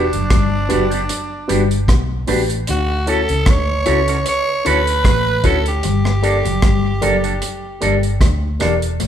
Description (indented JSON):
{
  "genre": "lovers rock reggae",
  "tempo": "76 BPM",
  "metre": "4/4",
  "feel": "swing 55% on 16ths",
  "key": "unclear",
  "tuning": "A4 = 442 Hz",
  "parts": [
    { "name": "growling tenor saxophone", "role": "melody", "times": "0.0-8.6 s", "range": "D4 to C#5", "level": "-21 LUFS", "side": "right 1 dB", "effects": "none" },
    { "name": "mellow tine electric piano", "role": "accompaniment", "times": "0.0-8.8 s", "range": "D4 to D5", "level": "-22 LUFS", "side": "left 1 dB", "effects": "medium stereo tremolo" },
    { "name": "electric guitar with an envelope filter", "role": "stabs", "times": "0.0-8.9 s", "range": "Bb3 to A4", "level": "-23 LUFS", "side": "right 3 dB", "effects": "none" },
    { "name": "vintage muted fingered electric bass", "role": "bass", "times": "0.0-9.1 s", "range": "E1 to D2", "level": "-20 LUFS", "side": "equal", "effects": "none" },
    { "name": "mellow electric guitar", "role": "riff", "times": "0.1-9.1 s", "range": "E3 to D4", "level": "-25 LUFS", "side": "left 5 dB", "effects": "none" },
    { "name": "deep reggae drum kit", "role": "drums", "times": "0.1-9.1 s", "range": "hi-hat, kick drum, rim click", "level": "-18 LUFS", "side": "equal", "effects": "tape echo" }
  ],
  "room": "moderate large studio reverb, RT60 1.3 s",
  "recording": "band playing live in one room",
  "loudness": "-14 LUFS",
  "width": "side -9 dB against mid",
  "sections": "0.0-9.1 A section",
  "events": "none",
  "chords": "0.0 Em7 (rootless); 2.7 Dmaj7; 5.8 Gmadd9"
}